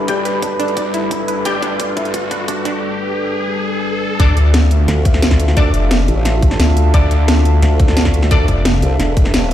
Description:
dark technical drum and bass; 175 BPM; 4/4; straight; D dorian; A4 = 443 Hz
dark analog pad; sustained chords; 0.0-9.5 s; G3 to F5; -22 LUFS; equal; chorus, vintage 12-bit sampler grit, sidechain pumping
analog pluck; arpeggios; 0.0-2.7 s; D4 to D5; -24 LUFS; right 3 dB; chorus, phaser, sidechain pumping, digital delay
wide detuned saw bass; bass; 0.0-8.8 s; F1 to G2; -15 LUFS; equal; chorus, tube saturation, sidechain pumping, high-pass filter
riser; sound effects; 0.0-4.2 s; -24 LUFS; equal
warbly tape-like pad; texture; 0.0-9.5 s; F4 to B5; -26 LUFS; equal; chorus, built-in reverb, sidechain pumping
orchestra-hit-like synth stab; stabs; 0.1-1.6, 4.2-8.4 s; D4 to G5; -23 LUFS; left 2 dB; built-in reverb, digital delay
drum and bass drum kit; drums; 0.1-9.5 s; hi-hat, snare drum; -19 LUFS; equal; overdrive
electronic kick drum; drums; 0.1-9.2 s; -14 LUFS; equal; overdrive, high-pass filter on kick
formant-sweep wobble bass; bass; 4.9-9.5 s; E1 to D2; -15 LUFS; equal; chorus
light reverb; played on a big sound system in a bare room, large studio reverb; -12 LUFS; side -12 dB against mid
0.0-4.2 A section; 4.2-9.5 B section
build-up 0.0-4.2; drum fill 0.0-2.8; riser 0.0-4.2; drop 4.2-9.5
0.0 G; 4.2 Dm

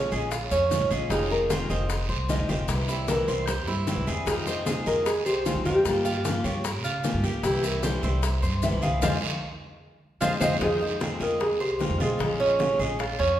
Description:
latin, Cuban son and guajira; 152 BPM; 4/4; straight; F minor; A4 = 440 Hz
nylon-string guitar; melody; 0.0-13.4 s; F4 to F5; -28 LUFS; left 1 dB
picked steel-string acoustic guitar; accompaniment; 0.0-13.0 s; C3 to G4; -33 LUFS; left 3 dB
Cuban tres; arpeggios; 0.0-13.4 s; Db4 to E5; -30 LUFS; right 3 dB
upright bass; bass; 0.0-13.4 s; F1 to Db3; -30 LUFS; equal
congas; percussion; 0.1-13.4 s; -34 LUFS; right 1 dB
guiro; percussion; 0.1-13.4 s; -37 LUFS; right 5 dB
maracas; percussion; 0.1-10.5 s; -40 LUFS; left 6 dB
bongos; percussion; 0.3-13.4 s; -35 LUFS; left 4 dB
wet recital hall reverb, RT60 1.5 s; recorded in a church or concert hall; -23 LUFS; side -12 dB against mid
0.0-10.6 A section; 10.6-13.4 A section
drum fill 9.0-10.6; band accent 9.0-10.6
0.0 Bbm7; 1.1 Fm7; 2.7 C; 4.3 Fm7; 5.9 Gm7b5; 7.4 C; 9.0 Fm7; 12.2 Bbm7

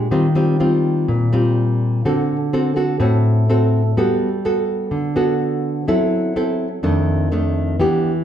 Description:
bossa nova; 125 BPM; 4/4; straight; G major; A4 = 440 Hz
nylon-string guitar; solo; 0.0-8.2 s; F2 to A4; -16 LUFS; equal
wet recital hall reverb, RT60 1.3 s; recorded in a church or concert hall; -16 LUFS; side -10 dB against mid
0.0-8.2 A section
0.1 Eb69; 2.0 D7; 4.0 Gmaj9; 5.9 F#m7b5; 6.8 F6

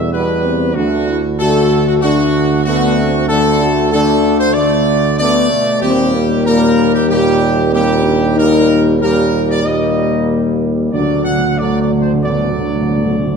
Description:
classical, ceremonial fanfare; 94 BPM; 4/4; straight; A4 = 440 Hz
clear trumpet section; melody; 0.0-13.4 s; F#4 to F#5; -17 LUFS; right 1 dB
mellow French horn section; sustained chords; 0.0-13.4 s; A3 to G4; -17 LUFS; left 7 dB
warm trombone section; sustained chords; 0.0-13.4 s; Bb2 to A3; -19 LUFS; right 2 dB
warm tuba; bass; 0.0-13.4 s; D2 to E2; -17 LUFS; right 4 dB
timpani; percussion; 10.9-13.3 s; D3; -21 LUFS; left 2 dB
wet scoring stage reverb, RT60 1.6 s; dark, warm production; -11 LUFS; side -6 dB against mid
0.0-13.4 A section
timpani fill 10.9-13.4
0.0 Em; 0.8 D; 5.8 Eb; 10.9 D

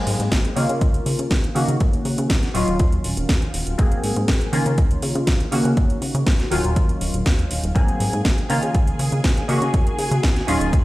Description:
filtered disco house; 121 BPM; 4/4; straight; A4 = 440 Hz
funky polysynth comp; accompaniment; 0.0-10.8 s; Eb3 to Ab4; -24 LUFS; equal; chorus, phaser, sidechain pumping, low-pass filter
plucky analog bass; bass; 0.1-10.8 s; Eb1 to Db3; -23 LUFS; equal; sidechain pumping, low-pass filter
house drum kit; drums; 0.1-10.8 s; hi-hat, snare drum; -27 LUFS; equal; sidechain pumping on hats, sidechain pumping on cymbals
electronic kick drum; drums; 0.3-10.8 s; -20 LUFS; equal
bright symphonic violin section; sustained chords; 7.8-10.8 s; Ab4 to Ab5; -30 LUFS; equal; sidechain pumping, low-pass filter
little or no reverb; played on a big sound system in a bare room, stone room reverb; -17 LUFS; side -17 dB against mid
0.0-10.8 A section
filter sweep 0.0-10.8
0.0 Ab9; 0.6 Db69; 1.6 Gb6/Db; 2.5 Ebm9; 3.8 Ab9; 4.5 Db69; 5.5 Gb6/Db; 6.5 Ebm9; 7.8 Ab9; 8.5 Db69; 9.5 Gb6/Db

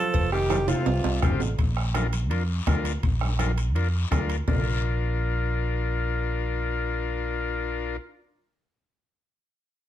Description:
latin, cumbia; 166 BPM; 4/4; straight; Bb major; A4 = 441 Hz
breathy alto saxophone; melody; 0.0-1.4 s; F4 to A4; -27 LUFS; equal
bright trombone; second line; 0.0-1.4 s; C3 to F3; -32 LUFS; right 8 dB
fingered electric bass; bass; 0.1-8.0 s; F1 to F2; -26 LUFS; equal
bombo; percussion; 0.1-4.6 s; -27 LUFS; left 1 dB
cowbell and timbales; percussion; 0.1-4.6 s; -33 LUFS; right 8 dB
guiro; percussion; 0.1-4.6 s; -40 LUFS; left 7 dB
combo organ; accompaniment; 0.3-8.0 s; C4 to Bb4; -30 LUFS; left 6 dB
congas; percussion; 0.5-4.6 s; -33 LUFS; left 1 dB
light reverb; -23 LUFS; side -12 dB against mid
0.0-1.6 A section; 1.6-4.5 B section; 4.5-7.4 C section
drum fill 0.5-1.6
0.0 F7; 1.6 Bb

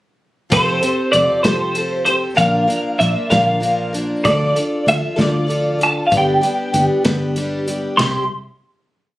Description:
folk rock and heartland rock; 64 BPM (dotted quarters); 6/8; straight; A4 = 439 Hz
twelve-string electric guitar; melody; 0.5-8.3 s; C5 to C6; -16 LUFS; equal; ensemble chorus
picked plugged-in twelve-string acoustic guitar; accompaniment; 0.5-8.2 s; G2 to Bb4; -21 LUFS; left 1 dB
fingered electric bass; bass; 0.5-8.3 s; F1 to D2; -22 LUFS; equal
damped 70s drum kit; drums; 0.5-8.1 s; hi-hat, kick drum, ride cymbal, snare drum, toms; -21 LUFS; equal
light reverb; recorded on a phone in the room, studio ambience, compression; -14 LUFS; side -16 dB against mid
0.5-8.0 pre-chorus; 8.0-9.2 final chord
0.5 Fadd9; 2.4 Bb; 4.2 Dm; 6.1 G; 8.0 C

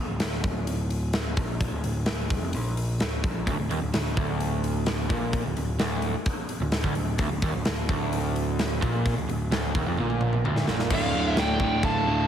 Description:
hard rock; 129 BPM; 4/4; straight; D minor; A4 = 440 Hz
overdriven picked electric bass; bass; 0.0-12.2 s; D1 to Bb1; -29 LUFS; equal
big rock drum kit; drums; 0.2-11.9 s; crash cymbal, hi-hat, kick drum, snare drum, toms; -28 LUFS; equal
overdriven semi-hollow guitar; riff; 3.5-12.3 s; D2 to D3; -32 LUFS; left 10 dB
overdriven semi-hollow guitar; riff; 3.5-12.3 s; D2 to D3; -30 LUFS; right 8 dB
biting lead guitar; melody; 10.9-12.3 s; F5 to A5; -27 LUFS; left 1 dB; overdrive, slapback echo
dark smooth lead guitar; second line; 10.9-12.3 s; D5 to F5; -36 LUFS; right 1 dB; overdrive
crunchy overdriven guitar; riff; 10.9-12.3 s; D2 to D3; -34 LUFS; equal
light reverb, small room ambience; heavily compressed radio sound, multiband compression; -24 LUFS; side -9 dB against mid
0.0-10.9 A section; 10.9-12.3 B section
drum fill 10.0-10.9
0.0 N.C.; 10.9 Dm

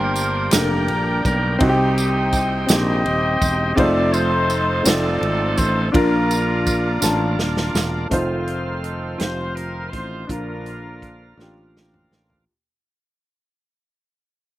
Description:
slow gospel; 55 BPM (dotted quarters); 6/8; straight; Bb major; A4 = 441 Hz
clear horn section; melody; 0.0-11.7 s; A3 to Eb5; -24 LUFS; equal; slapback echo
warm baby grand piano; accompaniment; 0.0-12.5 s; G2 to A5; -22 LUFS; left 1 dB
bright tonewheel organ; sustained chords; 0.0-12.4 s; D3 to A4; -28 LUFS; right 2 dB; slow rotary speaker, overdrive
fretless electric bass; bass; 0.0-12.4 s; Eb1 to C2; -24 LUFS; equal
natural country drum kit; drums; 0.2-12.5 s; hi-hat, kick drum, ride cymbal, snare drum, toms; -22 LUFS; equal
tambourine; percussion; 0.2-8.1 s; -26 LUFS; right 5 dB
little or no reverb; recorded outdoors, with no room sound; -17 LUFS; side -15 dB against mid
0.0-8.1 A section; 8.1-12.5 B section
drum fill 7.0-8.1, 11.4-12.5; fade-out 8.1-12.5
0.0 Gm; 1.6 Cm; 3.8 F7; 5.9 Bb; 8.1 F7; 10.3 Bb

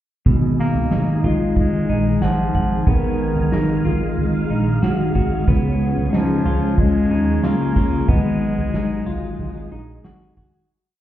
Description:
dream pop; 92 BPM; 4/4; straight; G# dorian; A4 = 440 Hz
ensemble organ-string; sustained chords; 0.3-10.7 s; D#3 to E#5; -23 LUFS; right 1 dB; ensemble chorus
semi-hollow electric guitar; arpeggios; 0.3-10.7 s; B2 to F#5; -25 LUFS; left 1 dB; wide subtle chorus, ping-pong delay
chorused synth bass; bass; 0.3-10.7 s; G#1 to D#2; -23 LUFS; equal
soft-mallet drum kit; drums; 0.3-10.5 s; kick drum, snare drum, toms; -22 LUFS; right 1 dB
bright bass clarinet; melody; 0.6-10.0 s; D#3 to A#3; -22 LUFS; left 1 dB; ping-pong delay
small room ambience; heard muffled through a wall, club reverb, EQ; -16 LUFS; side -12 dB against mid
0.3-10.7 A section
fade-out 8.1-10.7
0.3 G#m7; 5.5 C#7; 8.1 G#m7

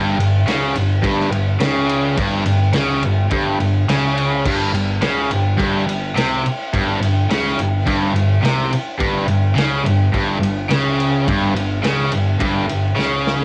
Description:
garage rock duo or trio; 105 BPM; 4/4; straight; A4 = 440 Hz
cranked stack guitar; riff; 0.0-13.4 s; G2 to C#3; -19 LUFS; equal; overdrive, cassette tape
fuzz picked electric bass; bass; 0.0-13.4 s; G1 to C#2; -29 LUFS; equal; overdrive
vintage drum kit; drums; 0.2-13.4 s; crash cymbal, kick drum, ride cymbal, snare drum; -25 LUFS; equal; cassette tape
light reverb; home recording on cassette; -18 LUFS; mono
0.0-13.4 A section
drum fill 13.0-13.4

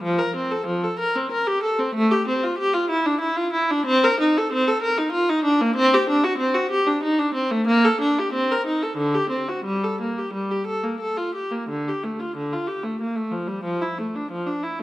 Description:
classical, baroque-style suite movement for unaccompanied viola; 86-96 BPM; 3/4; rubato; G minor from 3.9 s, D minor from 11.7 s; A4 = 440 Hz
clear viola; solo; 0.0-14.8 s; D3 to Bb4; -20 LUFS; equal
wet recital hall reverb, RT60 1.5 s; -20 LUFS; side -16 dB against mid
0.0-11.7 A section; 11.7-14.8 A section

